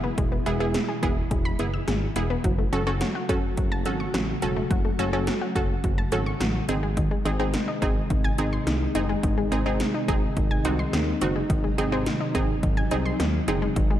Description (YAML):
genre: synth-pop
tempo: 106 BPM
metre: 4/4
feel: straight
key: unclear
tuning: A4 = 436 Hz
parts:
  - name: wide unison pluck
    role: accompaniment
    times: 0.0-13.7 s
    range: B3 to A4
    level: -30 LUFS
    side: right 2 dB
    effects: none
  - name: soft string machine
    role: sustained chords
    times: 0.0-14.0 s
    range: B2 to F#4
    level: -30 LUFS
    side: equal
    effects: ensemble chorus
  - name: analog pluck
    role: arpeggios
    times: 0.0-14.0 s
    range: D#3 to E6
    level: -31 LUFS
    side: left 2 dB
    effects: chorus, analog delay
  - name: smooth synth bass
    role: bass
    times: 0.0-14.0 s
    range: E1 to D#2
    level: -28 LUFS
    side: equal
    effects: none
  - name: 80s electronic pad drums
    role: drums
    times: 0.2-13.9 s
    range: hi-hat, kick drum, snare drum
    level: -27 LUFS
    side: equal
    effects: overdrive
room: light reverb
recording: dark, warm production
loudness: -22 LUFS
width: side -12 dB against mid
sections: 0.0-14.0 A section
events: none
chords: 0.0 E; 2.4 F#m; 6.7 G#